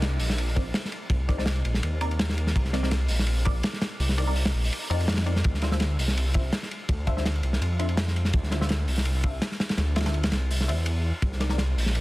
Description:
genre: drum and bass, jungle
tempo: 166 BPM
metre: 4/4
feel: swing 53% on 16ths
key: C minor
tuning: A4 = 440 Hz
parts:
  - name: detuned saw bass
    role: bass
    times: 0.0-12.0 s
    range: Bb1 to F2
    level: -25 LUFS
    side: equal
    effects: none
  - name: crunchy breakbeat drum kit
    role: drums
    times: 0.0-12.0 s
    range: hi-hat, kick drum, ride cymbal, snare drum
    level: -27 LUFS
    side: equal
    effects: none
  - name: filtered dub chord stab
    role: stabs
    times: 0.6-11.6 s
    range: C4 to E5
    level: -36 LUFS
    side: left 1 dB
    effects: phaser, lush chorus, dub echo
  - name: backwards swelling texture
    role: texture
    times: 11.6-12.0 s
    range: C6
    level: -54 LUFS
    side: right 3 dB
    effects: none
room: small room ambience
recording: dense, heavily limited modern master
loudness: -23 LUFS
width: side -19 dB against mid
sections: 0.0-12.0 A section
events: none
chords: 0.0 Cm9; 5.4 Dm9; 11.2 Cm9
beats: 0.02 0.38 0.74 | 1.10 1.47 1.83 2.19 | 2.55 2.91 3.27 3.63 | 4.00 4.36 4.72 5.08 | 5.44 5.80 6.17 6.53 | 6.89 7.25 7.61 7.97 | 8.33 8.70 9.06 9.42 | 9.78 10.14 10.50 10.86 | 11.22 11.59 11.95

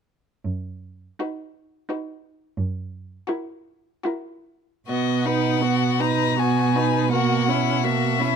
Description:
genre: classical, slow romantic movement for string quartet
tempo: 68-89 BPM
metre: 3/4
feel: rubato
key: B major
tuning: A4 = 444 Hz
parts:
  - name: warm cello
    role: bass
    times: 0.4-8.4 s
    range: F#2 to B2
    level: -25 LUFS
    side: right 6 dB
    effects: none
  - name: rich violin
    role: melody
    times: 1.2-8.4 s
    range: A#4 to A#5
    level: -26 LUFS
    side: left 11 dB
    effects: none
  - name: clear violin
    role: second line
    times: 1.2-8.4 s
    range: E4 to B4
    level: -27 LUFS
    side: left 5 dB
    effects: none
  - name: warm viola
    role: accompaniment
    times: 1.2-8.4 s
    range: A#3 to E4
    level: -25 LUFS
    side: right 4 dB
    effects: none
room: little or no reverb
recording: close, detailed microphones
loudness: -21 LUFS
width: side -7 dB against mid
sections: 0.4-4.9 A section; 4.9-8.4 B section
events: none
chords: 0.4 B/F#; 2.6 F#7; 4.9 B; 7.1 F#7/B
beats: | 0.44 1.19 1.89 | 2.57 3.28 4.05 | 4.88 5.62 6.38 | 7.12 7.84

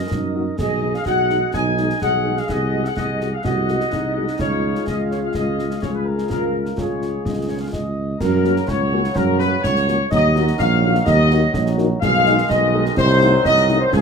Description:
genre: military-style march for wind band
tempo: 126 BPM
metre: 2/4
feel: straight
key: F# major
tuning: A4 = 441 Hz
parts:
  - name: mellow trumpet section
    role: melody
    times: 0.0-14.0 s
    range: G#4 to G#5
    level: -24 LUFS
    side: left 4 dB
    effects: none
  - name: mellow large flute ensemble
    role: second line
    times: 0.0-14.0 s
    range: G#4 to G#5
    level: -25 LUFS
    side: left 1 dB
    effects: none
  - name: warm woodwind section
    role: second line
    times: 0.0-14.0 s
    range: G#4 to F#5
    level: -26 LUFS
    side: left 2 dB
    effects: none
  - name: dark tuba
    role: bass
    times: 0.0-14.0 s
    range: A#1 to Gb2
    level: -20 LUFS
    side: right 3 dB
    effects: none
  - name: warm euphonium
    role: second line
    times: 0.1-8.0 s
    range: Eb4 to G#4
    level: -27 LUFS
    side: right 4 dB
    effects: none
  - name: concert snare drum, concert bass drum and clash cymbals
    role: drums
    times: 0.1-14.0 s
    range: none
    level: -28 LUFS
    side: left 1 dB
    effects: none
  - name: mellow French horn section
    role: accompaniment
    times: 0.3-13.8 s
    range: G#3 to G#4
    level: -25 LUFS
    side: left 6 dB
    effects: none
  - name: warm trombone section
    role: sustained chords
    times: 8.2-14.0 s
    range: C#3 to G#3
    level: -25 LUFS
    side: right 3 dB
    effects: none
room: little or no reverb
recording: none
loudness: -16 LUFS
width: side -6 dB against mid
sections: 0.0-8.2 A section; 8.2-14.0 B section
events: none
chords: 0.0 Ebm/Gb; 0.6 G#m7/B; 2.5 G#7/B#; 4.4 C#; 8.2 F#; 10.1 D#m; 12.0 G#m/B; 13.0 Cdim7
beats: 0.11 | 0.58 1.06 | 1.54 2.01 | 2.49 2.97 | 3.44 3.92 | 4.40 4.87 | 5.35 5.83 | 6.30 6.78 | 7.26 7.73 | 8.21 8.69 | 9.16 9.64 | 10.11 10.59 | 11.07 11.54 | 12.02 12.49 | 12.97 13.45 | 13.92

